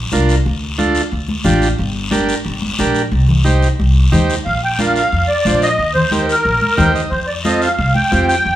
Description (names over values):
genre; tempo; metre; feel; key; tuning
latin, cumbia; 180 BPM; 4/4; straight; Bb major; A4 = 439 Hz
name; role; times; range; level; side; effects
upright bass; bass; 0.0-8.6 s; G1 to F2; -17 LUFS; equal; none
combo organ; accompaniment; 0.1-8.4 s; C4 to G5; -18 LUFS; right 2 dB; none
congas; percussion; 0.1-8.3 s; none; -21 LUFS; left 1 dB; none
guiro; percussion; 0.1-8.6 s; none; -26 LUFS; left 4 dB; none
musette accordion; melody; 4.5-8.6 s; Bb4 to G5; -15 LUFS; equal; none
room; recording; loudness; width
moderate large studio reverb, RT60 0.9 s; band playing live in one room; -13 LUFS; side -13 dB against mid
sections
0.0-4.5 A section; 4.5-8.6 B section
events
transistor combo organ fill 6.6-7.1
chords
0.5 Dm; 1.8 Gm; 3.1 Cm; 4.5 Bb; 5.8 Eb; 7.1 F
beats
0.12 | 0.45 0.79 1.12 1.45 | 1.79 2.12 2.45 2.79 | 3.12 3.45 3.79 4.12 | 4.45 4.79 5.12 5.45 | 5.79 6.12 6.45 6.79 | 7.12 7.45 7.79 8.12 | 8.45